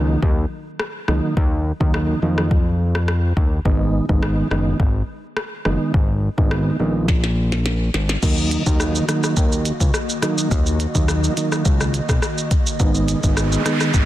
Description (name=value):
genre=dancehall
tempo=105 BPM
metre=4/4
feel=straight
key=Eb minor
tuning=A4 = 437 Hz
part: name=percussive tonewheel organ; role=accompaniment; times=0.0-13.9 s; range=Eb3 to Eb4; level=-23 LUFS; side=right 2 dB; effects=chorus vibrato
part: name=fat analog bass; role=bass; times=0.0-14.1 s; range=Gb1 to F2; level=-20 LUFS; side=equal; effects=none
part: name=glitchy drum kit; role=drums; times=0.2-14.1 s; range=crash cymbal, hi-hat, kick drum, rim click, shaker, snare drum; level=-20 LUFS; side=equal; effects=soft clipping on snare
part: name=airy breathy pad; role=sustained chords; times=8.2-14.1 s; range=Eb3 to Eb5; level=-27 LUFS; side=left 1 dB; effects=chorus, sidechain pumping
part: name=noise sweep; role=sound effects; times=13.2-14.1 s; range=none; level=-26 LUFS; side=right 4 dB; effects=none
room=light reverb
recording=dense, heavily limited modern master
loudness=-17 LUFS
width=side -14 dB against mid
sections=0.0-8.2 A section; 8.2-14.1 B section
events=drum fill 7.1-8.2; noise sweep 13.2-14.1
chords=0.0 Ebm; 3.7 Abm; 8.2 Ebm; 12.8 Abm